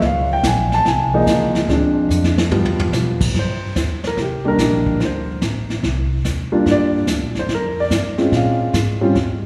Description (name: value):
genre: jazz piano trio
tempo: 144 BPM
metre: 4/4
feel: swing 67% on 8ths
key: C minor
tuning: A4 = 440 Hz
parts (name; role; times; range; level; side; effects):
- warm grand piano; melody; 0.0-9.1 s; Eb3 to A5; -20 LUFS; equal; none
- upright bass; bass; 0.0-9.5 s; G1 to B2; -24 LUFS; equal; none
- vintage brush drum kit; drums; 0.0-9.5 s; brushed snare drum, crash cymbal, hi-hat, kick drum, snare drum, toms; -25 LUFS; equal; none
room: wet church reverb, RT60 3.6 s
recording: recorded in a church or concert hall, studio reverb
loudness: -18 LUFS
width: mono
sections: 0.0-3.3 A section; 3.3-9.5 B section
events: drum fill 2.1-2.9; grand piano solo 3.3-9.5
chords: 0.0 Db6; 1.7 Dm7b5; 2.5 G7; 3.3 Cm7; 5.0 D5; 6.7 Gm7; 8.3 Bbm7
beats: | 0.02 0.44 0.85 1.27 | 1.68 2.10 2.51 2.93 | 3.34 3.76 4.17 4.59 | 5.00 5.42 5.83 6.25 | 6.66 7.08 7.50 7.91 | 8.33 8.74 9.16